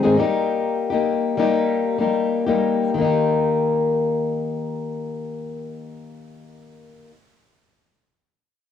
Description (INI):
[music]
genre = pop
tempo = 90-103 BPM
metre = 4/4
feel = straight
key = Eb major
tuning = A4 = 439 Hz
[part]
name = fingerpicked plugged-in steel-string acoustic guitar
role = accompaniment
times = 0.0-7.2 s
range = Ab2 to Ab4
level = -19 LUFS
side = left 3 dB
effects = plate reverb
[sound]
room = wet booth ambience, RT60 0.2 s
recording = home recording on cassette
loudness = -19 LUFS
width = side -8 dB against mid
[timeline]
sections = 0.0-3.0 A section; 3.0-5.6 B section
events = slowing down 0.0-3.0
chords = 0.2 Eb/G; 3.0 Eb